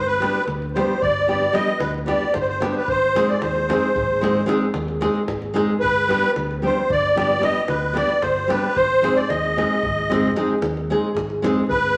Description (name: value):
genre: balkan folk, Balkan wedding band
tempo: 224 BPM (eighths)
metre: 11/8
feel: straight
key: unclear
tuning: A4 = 440 Hz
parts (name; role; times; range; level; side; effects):
- musette accordion; melody; 0.0-12.0 s; B4 to Eb5; -22 LUFS; equal; none
- modern bright fingered electric bass; bass; 0.0-12.0 s; G1 to Eb2; -33 LUFS; equal; none
- nylon-string guitar; accompaniment; 0.2-11.6 s; G3 to Ab4; -25 LUFS; equal; none
- davul; percussion; 0.2-11.8 s; none; -34 LUFS; equal; none
room: wet large studio reverb, RT60 1.3 s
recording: vinyl crackle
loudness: -20 LUFS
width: mono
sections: 0.0-12.0 A section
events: none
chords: 0.0 G; 2.9 Ab; 5.8 G; 8.8 Ab